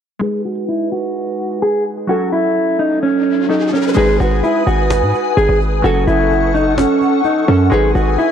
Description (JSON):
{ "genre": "hip hop, trap", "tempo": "128 BPM", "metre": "4/4", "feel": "half-time", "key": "G# phrygian", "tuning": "A4 = 440 Hz", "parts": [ { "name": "mellow electric guitar", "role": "melody", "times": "0.2-8.3 s", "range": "C#4 to G#4", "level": "-15 LUFS", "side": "right 2 dB", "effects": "low-pass filter, tape echo" }, { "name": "glassy digital keys", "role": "accompaniment", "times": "0.2-8.3 s", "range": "F#3 to B4", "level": "-22 LUFS", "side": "left 1 dB", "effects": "chorus, low-pass filter" }, { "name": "riser", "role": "sound effects", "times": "2.9-4.0 s", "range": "none", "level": "-25 LUFS", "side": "left 3 dB", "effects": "none" }, { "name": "glassy FM pad", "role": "sustained chords", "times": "4.2-8.3 s", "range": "A4 to D#6", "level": "-20 LUFS", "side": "left 4 dB", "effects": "ensemble chorus, built-in reverb" }, { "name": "hard-hitting 808-style bass", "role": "bass", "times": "4.0-8.2 s", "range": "F#1 to G#2", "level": "-16 LUFS", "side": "equal", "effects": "none" }, { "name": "cajon", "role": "drums", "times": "4.0-8.2 s", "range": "none", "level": "-27 LUFS", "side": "equal", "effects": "vintage 12-bit sampler grit" } ], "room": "little or no reverb", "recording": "dry, gritty hardware recording", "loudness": "-13 LUFS", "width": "side -8 dB against mid", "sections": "0.2-4.0 A section; 4.0-8.3 B section", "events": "filter sweep 0.2-4.0; riser 2.9-4.0", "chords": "0.2 G#m; 2.1 F#m; 4.0 G#m; 5.8 F#m; 7.7 G#m", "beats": "| 0.22 0.69 1.15 1.62 | 2.09 2.56 3.03 3.50 | 3.97 4.43 4.90 5.37 | 5.84 6.31 6.78 7.25 | 7.72 8.19" }